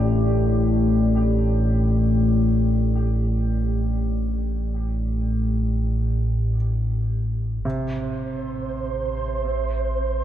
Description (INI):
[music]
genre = dark ambient drone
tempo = free time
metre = none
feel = none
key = A minor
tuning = A4 = 443 Hz
[part]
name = deep dark ambient pad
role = sustained chords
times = 0.0-7.7 s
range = A3 to D5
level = -34 LUFS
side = right 2 dB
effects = chorus, built-in reverb
[part]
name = warm grand piano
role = arpeggios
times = 0.0-10.2 s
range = C3 to G4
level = -32 LUFS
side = right 2 dB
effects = diffuse ambient delay
[part]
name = analog drone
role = drone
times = 0.0-10.2 s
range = A1 to A2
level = -21 LUFS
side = equal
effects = chorus
[part]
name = flickering grainy texture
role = texture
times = 8.0-10.2 s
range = C5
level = -28 LUFS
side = right 5 dB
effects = built-in reverb
[sound]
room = wet cathedral reverb, RT60 5.9 s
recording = in a vast, echoing space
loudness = -20 LUFS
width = side -11 dB against mid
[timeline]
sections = 0.0-7.6 A section; 7.6-10.2 B section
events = filter sweep on synth drone 7.6-10.2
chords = 0.0 A5; 7.6 Am